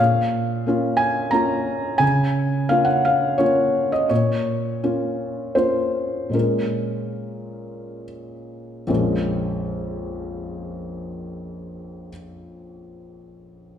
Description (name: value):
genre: neoclassical minimalist piano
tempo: 69-89 BPM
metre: 3/4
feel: rubato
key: Bb minor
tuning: A4 = 439 Hz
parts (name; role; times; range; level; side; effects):
- felt-muted upright piano; solo; 0.0-13.8 s; Bb1 to Bb5; -20 LUFS; equal; none
room: wet recital hall reverb, RT60 1.6 s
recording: recorded in a church or concert hall, faint mains hum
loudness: -19 LUFS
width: side -9 dB against mid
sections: 0.0-8.9 A section; 8.9-13.8 B section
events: slowing down 3.0-8.9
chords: 0.0 Bbm; 2.0 Db6; 4.1 Bbm; 6.3 Bbm7